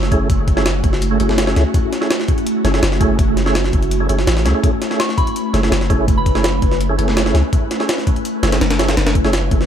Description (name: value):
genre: drum and bass, jungle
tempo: 166 BPM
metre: 4/4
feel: straight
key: F# minor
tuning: A4 = 440 Hz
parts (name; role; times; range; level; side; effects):
- ethereal airy pad; sustained chords; 0.0-9.7 s; A3 to B4; -21 LUFS; equal; ensemble chorus, built-in reverb, phaser
- long sustained 808-style bass; bass; 0.0-9.7 s; F#1 to C#2; -18 LUFS; equal; none
- jungle sampler-style drum kit; drums; 0.0-9.7 s; hi-hat, kick drum, snare drum; -18 LUFS; equal; small room ambience
- percussive tonewheel organ; stabs; 0.1-9.3 s; A3 to G#4; -22 LUFS; right 2 dB; chorus vibrato, fast rotary speaker, dub echo
- soft synth bell; melody; 5.0-6.7 s; B5 to C#6; -28 LUFS; equal; chorus, phaser, dub echo
room: little or no reverb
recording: none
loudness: -14 LUFS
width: side -9 dB against mid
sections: 0.0-9.7 A section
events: none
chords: 0.0 F#m7